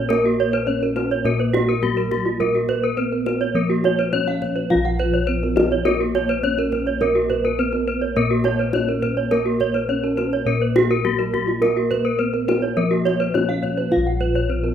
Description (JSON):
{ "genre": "Balinese gamelan", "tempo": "104 BPM", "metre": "4/4", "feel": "straight", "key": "Bb pelog", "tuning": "A4 = 441 Hz", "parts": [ { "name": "gamelan-type bronze metallophone", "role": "melody", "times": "0.0-14.7 s", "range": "Gb3 to F4", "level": "-28 LUFS", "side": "right 2 dB", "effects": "none" }, { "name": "gamelan-type bronze metallophone", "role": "accompaniment", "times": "0.0-13.9 s", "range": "F3 to Bb3", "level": "-28 LUFS", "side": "left 3 dB", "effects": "none" }, { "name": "gamelan-type bronze metallophone", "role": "arpeggios", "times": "0.0-14.7 s", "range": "F4 to Gb5", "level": "-24 LUFS", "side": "right 7 dB", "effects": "none" }, { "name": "gamelan-type bossed gongs", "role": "bass", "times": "0.0-14.7 s", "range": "Bb1 to Bb4", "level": "-23 LUFS", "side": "equal", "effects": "none" }, { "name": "gamelan-type bronze metallophone", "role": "arpeggios", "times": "0.1-14.6 s", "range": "Gb4 to F5", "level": "-25 LUFS", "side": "left 8 dB", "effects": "none" }, { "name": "kendang", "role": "percussion", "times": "0.1-14.7 s", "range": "none", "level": "-26 LUFS", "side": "left 2 dB", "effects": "none" } ], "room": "studio reverb", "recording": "rough home demo mix", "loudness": "-18 LUFS", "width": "side -9 dB against mid", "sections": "0.0-13.9 A section", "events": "none", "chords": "none" }